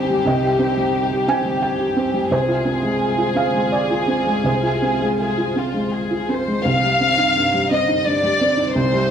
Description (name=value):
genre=neoclassical piano and strings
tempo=80-90 BPM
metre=3/4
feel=rubato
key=C minor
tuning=A4 = 439 Hz
part: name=dark chamber violin section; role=melody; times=0.0-9.1 s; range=F4 to F5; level=-20 LUFS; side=left 2 dB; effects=analog delay
part: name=felt-muted upright piano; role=accompaniment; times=0.0-9.1 s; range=C2 to Ab5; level=-20 LUFS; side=right 2 dB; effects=none
part: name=warm chamber string section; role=sustained chords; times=0.0-9.1 s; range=G3 to C5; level=-29 LUFS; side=equal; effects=none
room=moderate studio reverb, RT60 0.5 s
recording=dry, gritty hardware recording, studio reverb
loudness=-16 LUFS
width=side -8 dB against mid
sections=0.0-6.7 A section; 6.7-9.1 B section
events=none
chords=0.0 Cm; 2.3 Fm/C; 6.7 Cm